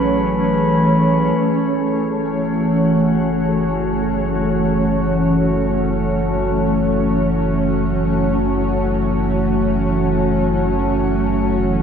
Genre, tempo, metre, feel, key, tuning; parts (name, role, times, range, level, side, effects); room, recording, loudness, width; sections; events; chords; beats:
ambient; free time; F# minor; A4 = 440 Hz
glassy FM pad; sustained chords; 0.0-11.8 s; E3 to C#5; -16 LUFS; equal; ensemble chorus, built-in reverb
warm sub bass; bass; 0.0-11.8 s; F#1 to A1; -25 LUFS; equal; tube saturation
bowed-like drone; drone; 0.0-11.8 s; F#3 to C#4; -29 LUFS; right 1 dB; built-in reverb
glass harmonica; texture; 0.0-1.4 s; B4 to B5; -22 LUFS; left 3 dB
wet lush hall reverb, RT60 2.4 s; worn, warbling old tape, cassette tape, warbly pitch drift; -15 LUFS; side -7 dB against mid
0.0-1.4 A section; 1.4-11.8 B section
fade-in on synth drone 1.4-11.8
0.0 Amaj7; 1.4 F#m7
free time